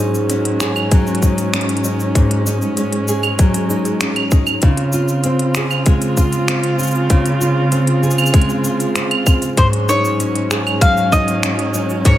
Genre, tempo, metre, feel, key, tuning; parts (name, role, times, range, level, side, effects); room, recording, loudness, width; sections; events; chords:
folktronica; 97 BPM; 4/4; straight; Db major; A4 = 440 Hz
dark string quartet; sustained chords; 0.0-12.2 s; Ab2 to F4; -20 LUFS; right 1 dB
nylon-string guitar; arpeggios; 0.0-12.2 s; Ab2 to Ab4; -18 LUFS; equal; tape echo
organic electronic drum kit; drums; 0.1-12.2 s; claves, finger snaps, hi-hat, shaker; -22 LUFS; right 1 dB; overdrive
electronic kick drum; drums; 0.9-12.2 s; -14 LUFS; equal; overdrive
mandolin; melody; 9.6-12.2 s; C5 to F5; -18 LUFS; left 1 dB; tape echo
light reverb, small room ambience; -13 LUFS; side -13 dB against mid
0.0-12.2 A section
0.0 Ab7sus4; 4.6 Dbmaj7; 9.6 Ab7sus4